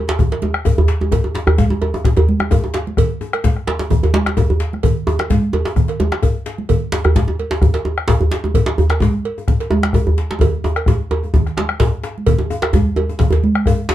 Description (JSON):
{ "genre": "west african traditional, West African drum ensemble", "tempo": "129 BPM", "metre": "4/4", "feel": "swing 53% on 16ths", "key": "none", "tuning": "none", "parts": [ { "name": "djembe", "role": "percussion", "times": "0.1-13.9 s", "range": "none", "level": "-23 LUFS", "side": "left 4 dB", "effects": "none" }, { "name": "djembe", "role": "percussion", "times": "0.1-13.9 s", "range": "none", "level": "-17 LUFS", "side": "right 1 dB", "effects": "none" }, { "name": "bombo", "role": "percussion", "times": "0.2-13.8 s", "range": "none", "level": "-17 LUFS", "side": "left 2 dB", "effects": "none" }, { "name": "congas", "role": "percussion", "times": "0.2-13.5 s", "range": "none", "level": "-22 LUFS", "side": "right 4 dB", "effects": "none" }, { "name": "cowbell", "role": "percussion", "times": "0.3-13.8 s", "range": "none", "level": "-24 LUFS", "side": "right 5 dB", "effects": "none" } ], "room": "moderate small room reverb, RT60 0.5 s", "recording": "dark, warm production", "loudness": "-14 LUFS", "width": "side -13 dB against mid", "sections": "0.0-12.3 A section; 12.3-13.9 B section", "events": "drum fill 10.4-12.3", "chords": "none" }